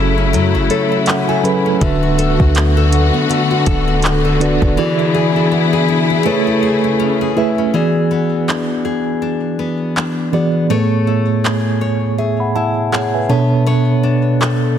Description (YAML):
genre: contemporary R&B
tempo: 81 BPM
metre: 4/4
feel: swing 58% on 16ths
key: unclear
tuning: A4 = 440 Hz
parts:
  - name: mellow tine electric piano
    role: accompaniment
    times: 0.0-14.8 s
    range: A2 to B5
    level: -16 LUFS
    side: right 3 dB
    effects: medium stereo tremolo
  - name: warm studio string section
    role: sustained chords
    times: 0.0-7.7 s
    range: C#3 to G#4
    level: -18 LUFS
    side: left 2 dB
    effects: sidechain pumping
  - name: nylon-string guitar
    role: arpeggios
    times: 0.0-14.8 s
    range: D3 to C#5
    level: -19 LUFS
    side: left 8 dB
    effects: digital delay
  - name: clean 808-style bass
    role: bass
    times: 0.0-4.8 s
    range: D1 to F#2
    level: -16 LUFS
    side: equal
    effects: none
  - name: smooth R&B drum kit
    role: drums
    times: 0.3-14.6 s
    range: handclaps, hi-hat, kick drum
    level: -20 LUFS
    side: right 1 dB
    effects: overdrive
room: light reverb, digital ambience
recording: dense, heavily limited modern master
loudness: -13 LUFS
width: side -9 dB against mid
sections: 0.0-7.7 A section; 7.7-14.8 B section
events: tine electric piano fill 0.3-1.8, 11.4-13.7; drums muted 4.8-7.7; kick muted 7.7-14.8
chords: 0.0 F#m7; 1.8 D6; 4.8 E7; 6.3 Amaj7; 7.7 E7; 10.7 Amaj7; 13.3 Bm9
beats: 0.33 1.07 | 1.81 2.56 3.29 4.04 | 4.78 5.52 6.26 7.00 | 7.74 8.48 9.22 9.96 | 10.70 11.44 12.18 12.93 | 13.67 14.41